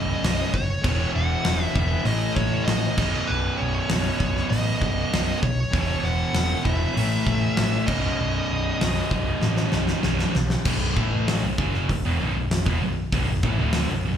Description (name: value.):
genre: hard rock.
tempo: 98 BPM.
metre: 4/4.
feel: straight.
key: B mixolydian.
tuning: A4 = 441 Hz.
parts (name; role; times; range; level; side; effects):
nasal lead guitar with a parked wah; melody; 0.0-10.0 s; B4 to F#5; -29 LUFS; equal; overdrive, digital delay.
crunchy overdriven guitar; riff; 0.0-14.2 s; B1 to A3; -29 LUFS; equal; none.
high-gain distorted guitar; riff; 0.0-14.2 s; B1 to A3; -31 LUFS; right 11 dB; distortion, slapback echo.
scooped high-gain guitar; riff; 0.0-14.2 s; B1 to A3; -32 LUFS; left 10 dB; distortion.
hollow-body short-scale picked electric bass; bass; 0.0-14.2 s; B0 to B1; -26 LUFS; equal; none.
huge arena drum kit; drums; 0.2-13.9 s; crash cymbal, hi-hat, kick drum, snare drum; -27 LUFS; equal; none.
room: little or no reverb.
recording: live gig heard through the venue's PA, club reverb.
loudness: -21 LUFS.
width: side -9 dB against mid.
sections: 0.0-10.7 A section; 10.7-14.2 B section.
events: drum fill 9.4-10.7.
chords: 0.0 B; 0.8 E5; 2.1 A5; 3.0 B; 5.7 E5; 7.0 A5; 7.9 B; 10.7 B5.